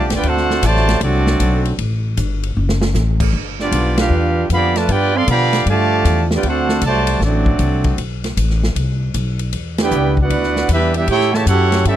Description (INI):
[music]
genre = jazz, big band swing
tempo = 155 BPM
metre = 4/4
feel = swing 66% on 8ths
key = D major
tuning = A4 = 438 Hz
[part]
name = warm trumpet section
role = melody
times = 0.0-12.0 s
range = B3 to C6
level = -18 LUFS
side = right 1 dB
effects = none
[part]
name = mellow trombone section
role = second line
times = 0.0-12.0 s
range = C3 to G4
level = -20 LUFS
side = right 5 dB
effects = none
[part]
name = upright bass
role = bass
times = 0.0-12.0 s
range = F#1 to B2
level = -17 LUFS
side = left 1 dB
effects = none
[part]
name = swinging big-band drum kit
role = drums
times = 0.1-12.0 s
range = crash cymbal, hi-hat, kick drum, ride cymbal, snare drum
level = -23 LUFS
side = equal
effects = none
[sound]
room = little or no reverb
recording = dry, close 1970s-style studio recording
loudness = -14 LUFS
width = side -12 dB against mid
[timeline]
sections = 0.0-12.0 A section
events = drum fill 2.6-3.0; band accent 3.9, 9.7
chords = 0.2 D7; 1.8 Gsus2; 2.6 F#m; 3.3 G7; 6.4 D7; 8.0 Amadd9; 9.5 Em7; 11.1 A7